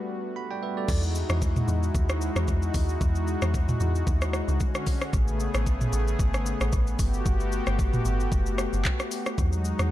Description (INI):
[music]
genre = amapiano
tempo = 113 BPM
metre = 4/4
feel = swing 55% on 16ths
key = E major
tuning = A4 = 439 Hz
[part]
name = bell-like tine electric piano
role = accompaniment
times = 0.0-1.0 s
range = G3 to B5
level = -35 LUFS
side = right 8 dB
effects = none
[part]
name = warm analog pad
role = sustained chords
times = 0.0-9.9 s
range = C#3 to G#4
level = -31 LUFS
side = left 2 dB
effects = chorus, sidechain pumping
[part]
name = deep log drum bass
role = bass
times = 0.9-9.9 s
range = F#1 to E2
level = -26 LUFS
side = equal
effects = none
[part]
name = smooth R&B drum kit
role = drums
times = 0.9-9.9 s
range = crash cymbal, handclaps, hi-hat, kick drum, rim click, shaker, toms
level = -27 LUFS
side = equal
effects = none
[sound]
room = digital ambience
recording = dark, warm production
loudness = -24 LUFS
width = side -14 dB against mid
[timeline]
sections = 0.9-9.9 A section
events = break 0.0-0.9; drop 0.9-9.9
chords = 0.0 Gmaj9; 0.9 Emaj9; 4.6 Dmaj7#11; 5.1 Amaj9; 7.0 Gmaj9; 9.4 Emaj9